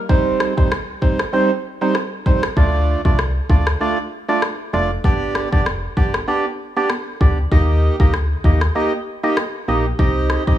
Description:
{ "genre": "dancehall", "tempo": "97 BPM", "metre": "4/4", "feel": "swing 56% on 16ths", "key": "unclear", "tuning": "A4 = 440 Hz", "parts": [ { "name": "percussive organ stab", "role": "accompaniment", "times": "0.1-10.6 s", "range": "G3 to Eb5", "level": "-20 LUFS", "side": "right 2 dB", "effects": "chorus, sidechain pumping" }, { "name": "afro-pop drum kit", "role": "drums", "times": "0.1-10.6 s", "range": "kick drum, rim click", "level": "-18 LUFS", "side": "equal", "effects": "none" }, { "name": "woody FM bass", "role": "bass", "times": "2.6-10.6 s", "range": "F1 to Eb2", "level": "-19 LUFS", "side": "equal", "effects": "none" } ], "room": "light reverb, digital ambience", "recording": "small room reverb", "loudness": "-16 LUFS", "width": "side -12 dB against mid", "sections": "0.0-10.6 A section", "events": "none", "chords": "0.1 Cm; 2.6 Dm; 5.0 G; 7.5 Eb; 10.0 Cm", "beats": "| 0.09 0.71 1.33 1.95 | 2.57 3.19 3.81 4.42 | 5.04 5.66 6.28 6.90 | 7.52 8.14 8.75 9.37 | 9.99" }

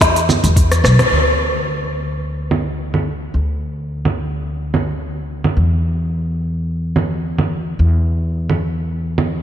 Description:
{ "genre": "organic downtempo", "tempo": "108 BPM", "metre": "4/4", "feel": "swing 53% on 16ths", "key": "unclear", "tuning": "A4 = 440 Hz", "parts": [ { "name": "upright bass", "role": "bass", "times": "0.0-9.4 s", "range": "B1 to E2", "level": "-18 LUFS", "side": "equal", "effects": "sidechain pumping" }, { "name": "electronic kick drum", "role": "drums", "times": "0.0-0.7 s", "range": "none", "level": "-14 LUFS", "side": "equal", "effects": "none" }, { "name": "organic electronic drum kit", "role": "drums", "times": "0.0-9.3 s", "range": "congas, hi-hat, rim click, shaker, snare drum", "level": "-18 LUFS", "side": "right 1 dB", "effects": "low-pass filter on hats, low-pass filter on perc, low-pass filter on snare, gated reverb" } ], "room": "moderate lush hall reverb, RT60 3.0 s", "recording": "bright 1980s-style digital production", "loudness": "-16 LUFS", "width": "side -10 dB against mid", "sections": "0.0-1.1 A section; 1.1-9.4 B section", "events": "drum fill 0.7-1.1; band accent 1.0", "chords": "none", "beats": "0.01 0.57 | 1.12 1.68 2.23 2.79 | 3.35 3.90 4.46 5.01 | 5.57 6.12 6.68 7.23 | 7.79 8.35 8.90" }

